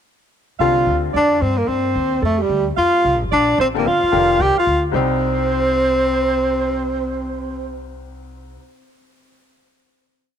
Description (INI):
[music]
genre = modal jazz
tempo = 222 BPM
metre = 4/4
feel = swing 61% on 8ths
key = C dorian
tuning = A4 = 440 Hz
[part]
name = breathy tenor saxophone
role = melody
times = 0.6-7.9 s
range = G3 to G4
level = -17 LUFS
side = left 1 dB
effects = none
[part]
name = warm alto saxophone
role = second line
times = 0.6-7.9 s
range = G4 to G5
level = -24 LUFS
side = right 13 dB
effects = none
[part]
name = bright upright piano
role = accompaniment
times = 0.6-1.4, 3.7-8.6 s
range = C2 to Bb4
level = -26 LUFS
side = left 13 dB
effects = none
[part]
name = upright bass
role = bass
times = 0.6-8.6 s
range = F1 to G2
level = -25 LUFS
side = equal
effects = none
[sound]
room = light reverb, small room ambience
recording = 1960s-style stereo with parts hard left and right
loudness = -15 LUFS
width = side -8 dB against mid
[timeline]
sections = 0.6-4.9 A section; 4.9-7.1 final chord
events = none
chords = 0.6 C9sus4; 4.9 Cm